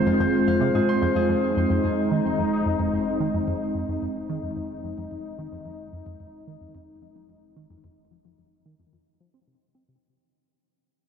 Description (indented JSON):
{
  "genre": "ambient, sequencer-driven space music",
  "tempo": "110 BPM",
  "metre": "4/4",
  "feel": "straight",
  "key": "F minor",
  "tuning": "A4 = 444 Hz",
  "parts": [
    { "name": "sweeping resonant pad", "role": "sustained chords", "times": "0.0-10.0 s", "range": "Ab3 to F4", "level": "-24 LUFS", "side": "right 1 dB", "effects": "chorus" },
    { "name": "Celtic harp", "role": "arpeggios", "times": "0.0-3.4 s", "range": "F4 to C6", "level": "-28 LUFS", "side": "moving between left 5 dB and right 1 dB", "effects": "auto-pan, ping-pong delay" },
    { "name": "fat analog bass", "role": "bass", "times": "0.0-10.0 s", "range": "F1", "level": "-46 LUFS", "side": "right 1 dB", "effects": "none" },
    { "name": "tight sequenced synth", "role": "riff", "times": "0.1-10.0 s", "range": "F2 to C4", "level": "-29 LUFS", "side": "equal", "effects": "chorus, ping-pong delay" }
  ],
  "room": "wet huge ambient reverb, RT60 8.0 s",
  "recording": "dreamy mix soaked in reverb",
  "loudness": "-22 LUFS",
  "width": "side -7 dB against mid",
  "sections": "0.0-10.0 A section",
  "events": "fade-out 0.0-10.0; filter sweep on synth arpeggio sound 0.0-10.0",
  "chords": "0.0 Fm"
}